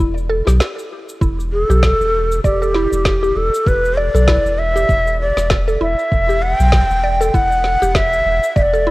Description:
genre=organic downtempo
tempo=98 BPM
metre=4/4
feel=swing 57% on 16ths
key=E minor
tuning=A4 = 440 Hz
part: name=mallet-like synth pluck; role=arpeggios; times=0.0-8.9 s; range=E4 to D5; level=-22 LUFS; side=right 1 dB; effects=chorus, phaser, tape echo
part: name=warm sub bass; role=bass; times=0.0-8.9 s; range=E1 to B1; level=-18 LUFS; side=equal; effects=sidechain pumping
part: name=electronic shaker and snare drum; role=drums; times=0.0-8.8 s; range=none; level=-23 LUFS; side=equal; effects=none
part: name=electronic kick drum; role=drums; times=1.2-8.7 s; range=none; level=-18 LUFS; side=equal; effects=none
part: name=breathy bright low ney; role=melody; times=1.5-8.9 s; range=G4 to G5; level=-16 LUFS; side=equal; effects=tape echo
room=light reverb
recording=worn, warbling old tape, cassette tape, warbly pitch drift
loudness=-13 LUFS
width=side -19 dB against mid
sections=0.0-8.9 A section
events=break 0.6-1.2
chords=0.0 Em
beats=0.60 | 1.22 1.83 2.44 3.05 | 3.66 4.28 4.89 5.50 | 6.11 6.72 7.34 7.95 | 8.56

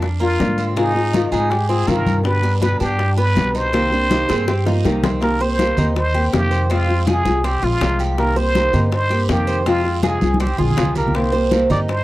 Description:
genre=latin, Cuban son and guajira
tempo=162 BPM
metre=4/4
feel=straight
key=C minor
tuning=A4 = 439 Hz
part: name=nylon-string guitar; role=accompaniment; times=0.0-11.9 s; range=B2 to G4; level=-22 LUFS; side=left 2 dB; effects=none
part: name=Cuban tres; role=arpeggios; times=0.0-12.0 s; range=Ab3 to C5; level=-25 LUFS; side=right 2 dB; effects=none
part: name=upright bass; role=bass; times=0.0-12.0 s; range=Bb1 to Ab2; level=-20 LUFS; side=equal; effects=none
part: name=bongos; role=percussion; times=0.0-12.0 s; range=none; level=-26 LUFS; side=left 5 dB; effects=none
part: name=congas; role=percussion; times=0.0-12.0 s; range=none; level=-24 LUFS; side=equal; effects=none
part: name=guiro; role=percussion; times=0.0-12.0 s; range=none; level=-36 LUFS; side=right 8 dB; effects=none
part: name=trumpet with plunger mute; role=melody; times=0.2-12.0 s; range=Eb4 to D5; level=-22 LUFS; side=equal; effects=none
part: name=nylon-string guitar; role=second line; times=3.9-5.2 s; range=D4 to Ab4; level=-23 LUFS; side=right 4 dB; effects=none
room=light reverb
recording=dry, close 1970s-style studio recording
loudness=-15 LUFS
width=side -16 dB against mid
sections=0.0-5.2 A section; 5.2-12.0 B section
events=drum fill 4.1-5.2, 10.2-11.1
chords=0.0 Bb; 0.8 Fm7/Ab; 2.3 G; 3.7 Cm7; 6.7 Fm; 8.2 Cm7; 9.7 Fm; 11.1 Cm7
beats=0.02 0.39 | 0.77 1.14 1.51 1.88 | 2.25 2.62 2.99 3.36 | 3.73 4.11 4.48 4.85 | 5.22 5.59 5.96 6.33 | 6.70 7.07 7.44 7.81 | 8.18 8.55 8.92 9.29 | 9.66 10.03 10.40 10.78 | 11.15 11.52 11.89

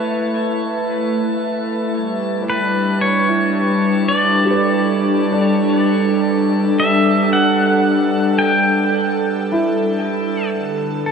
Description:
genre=ambient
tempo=56 BPM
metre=4/4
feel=straight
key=G lydian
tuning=A4 = 443 Hz
part: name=pedal steel guitar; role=melody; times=0.0-11.1 s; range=A4 to G5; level=-20 LUFS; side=left 1 dB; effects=diffuse ambient delay
part: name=airy breathy pad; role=sustained chords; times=0.0-11.1 s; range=D3 to E5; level=-16 LUFS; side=equal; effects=chorus
part: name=felt-muted upright piano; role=arpeggios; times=0.0-11.1 s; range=D4 to E5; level=-26 LUFS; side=left 1 dB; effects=diffuse ambient delay
part: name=drifting glass-harmonics texture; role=texture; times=0.0-11.1 s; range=A5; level=-32 LUFS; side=right 2 dB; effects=chorus, built-in reverb
room=wet cathedral reverb, RT60 5.4 s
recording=in a vast, echoing space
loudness=-14 LUFS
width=side -6 dB against mid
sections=0.0-11.1 A section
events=fade-in on synth texture 0.0-11.1; fade-out 7.7-11.1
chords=0.0 A; 2.0 G; 10.5 D5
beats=0.88 | 1.96 3.03 4.10 5.17 | 6.24 7.31 8.38 9.46 | 10.53

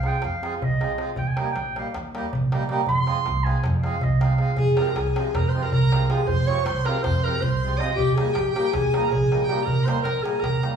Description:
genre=balkan folk, Balkan wedding band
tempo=319 BPM (eighths)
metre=9/8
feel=straight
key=F minor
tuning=A4 = 438 Hz
part: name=mellow clarinet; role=melody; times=0.0-10.6 s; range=G4 to C6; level=-25 LUFS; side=left 1 dB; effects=none
part: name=accordion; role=accompaniment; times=0.0-10.7 s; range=Bb2 to Ab4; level=-30 LUFS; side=right 3 dB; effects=none
part: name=upright bass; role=bass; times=0.0-10.7 s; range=Bb1 to F2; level=-27 LUFS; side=right 1 dB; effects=none
part: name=darbuka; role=percussion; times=0.0-10.8 s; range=none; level=-25 LUFS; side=right 2 dB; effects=none
part: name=rich violin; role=second line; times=4.6-10.6 s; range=G5 to Eb6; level=-32 LUFS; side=right 4 dB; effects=none
room=wet large studio reverb, RT60 0.8 s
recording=band playing live in one room, small room ambience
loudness=-20 LUFS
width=side -7 dB against mid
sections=0.0-4.6 A section; 4.6-10.8 B section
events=clarinet solo 0.0-4.6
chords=0.0 Fm; 1.2 Eb; 2.9 Fm; 8.0 Eb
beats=0.03 0.23 0.41 0.60 0.80 0.99 | 1.18 1.37 1.56 1.75 1.94 2.13 2.31 2.50 2.69 | 2.88 3.07 3.26 3.45 3.64 3.83 4.02 4.21 4.40 | 4.59 4.78 4.96 5.15 5.34 5.53 5.72 5.91 6.09 | 6.28 6.47 6.66 6.84 7.03 7.22 7.41 7.60 7.78 | 7.97 8.16 8.35 8.54 8.72 8.91 9.10 9.29 9.47 | 9.66 9.85 10.04 10.22 10.41 10.60

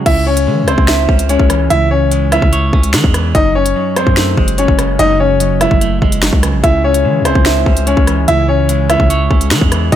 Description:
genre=hip hop, drill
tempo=146 BPM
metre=4/4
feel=half-time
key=C# harmonic minor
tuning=A4 = 440 Hz
part: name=clean electric guitar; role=accompaniment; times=0.0-10.0 s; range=F#2 to E5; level=-18 LUFS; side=right 6 dB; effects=phaser
part: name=pipe organ, principal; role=sustained chords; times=0.0, 6.6-10.0 s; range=C#3 to G#4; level=-25 LUFS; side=left 3 dB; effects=none
part: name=clear grand piano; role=melody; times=0.1-10.0 s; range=B#3 to E5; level=-14 LUFS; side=left 2 dB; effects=none
part: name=hard-hitting 808-style bass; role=bass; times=0.1-10.0 s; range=F#1 to E3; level=-16 LUFS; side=equal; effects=none
part: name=drill drum kit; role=drums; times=0.1-10.0 s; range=crash cymbal, finger snaps, hi-hat, kick drum, rim click, snare drum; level=-14 LUFS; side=equal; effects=none
room=little or no reverb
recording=none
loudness=-10 LUFS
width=side -11 dB against mid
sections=0.1-10.0 A section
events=none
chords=0.1 C#m; 3.3 F#madd9; 6.6 C#m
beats=| 0.06 0.47 0.88 1.29 | 1.70 2.12 2.53 2.94 | 3.35 3.76 4.17 4.58 | 4.99 5.40 5.81 6.22 | 6.64 7.05 7.46 7.87 | 8.28 8.69 9.10 9.51 | 9.92

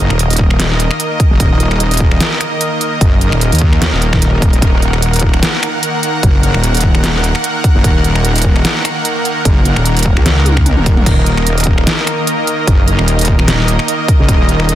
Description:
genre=heavy wobble dubstep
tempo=149 BPM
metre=4/4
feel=swing 55% on 16ths, half-time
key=Eb minor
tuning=A4 = 440 Hz
part: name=supersaw pad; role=sustained chords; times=0.0-14.8 s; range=Eb3 to Gb5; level=-17 LUFS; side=equal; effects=sidechain pumping
part: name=wobble bass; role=bass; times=0.0-14.8 s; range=Eb1 to Eb2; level=-13 LUFS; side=equal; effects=chorus, overdrive
part: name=dubstep drum kit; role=drums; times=0.1-14.8 s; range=crash cymbal, finger snaps, hi-hat, snare drum, toms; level=-17 LUFS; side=equal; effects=none
part: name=electronic kick drum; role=drums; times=0.4-14.4 s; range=none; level=-12 LUFS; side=equal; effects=none
room=little or no reverb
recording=dense, heavily limited modern master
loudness=-10 LUFS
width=side -12 dB against mid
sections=0.0-14.8 A section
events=drum fill 10.5-11.1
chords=0.0 Eb5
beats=0.19 0.59 1.00 | 1.40 1.80 2.21 2.61 | 3.01 3.41 3.82 4.22 | 4.62 5.02 5.43 5.83 | 6.23 6.63 7.04 7.44 | 7.84 8.24 8.65 9.05 | 9.45 9.86 10.26 10.66 | 11.06 11.47 11.87 12.27 | 12.68 13.08 13.48 13.88 | 14.29 14.69

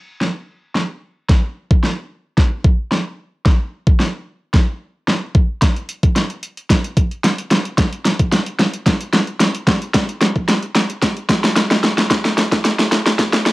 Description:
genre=pop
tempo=111 BPM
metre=4/4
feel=straight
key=none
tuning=none
part: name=pop drum kit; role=drums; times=0.2-13.5 s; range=hi-hat, kick drum, snare drum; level=-14 LUFS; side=equal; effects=overdrive, cassette tape
room=moderate studio reverb, RT60 0.6 s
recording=home recording on cassette, high-pass filter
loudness=-15 LUFS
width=side -19 dB against mid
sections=0.0-13.5 A section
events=build-up 0.0-13.5; drum fill 0.0-13.5; filter sweep 0.0-13.5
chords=none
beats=0.21 0.76 | 1.30 1.84 2.38 2.92 | 3.46 4.00 4.54 5.08 | 5.62 6.16 6.70 7.24 | 7.78 8.32 8.86 9.40 | 9.94 10.48 11.03 11.57 | 12.11 12.65 13.19

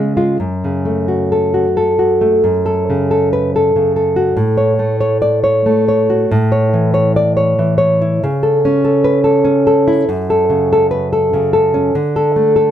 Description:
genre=romantic piece for solo classical guitar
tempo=86-99 BPM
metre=3/4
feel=rubato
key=F# minor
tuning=A4 = 440 Hz
part: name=nylon-string guitar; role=solo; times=0.0-12.7 s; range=F#2 to D5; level=-12 LUFS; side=equal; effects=none
room=light reverb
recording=none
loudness=-12 LUFS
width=side -10 dB against mid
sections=0.0-2.4 A section; 2.4-12.7 B section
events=none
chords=0.4 F#m; 4.4 F#m/A (rootless); 6.3 A; 8.2 A/C#; 10.1 F#m; 12.0 Bm7/D (rootless)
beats=| 0.38 1.07 1.75 | 2.42 3.09 3.74 | 4.37 5.01 5.64 | 6.29 6.94 7.58 | 8.23 8.85 9.46 | 10.09 10.71 11.33 | 11.95 12.59

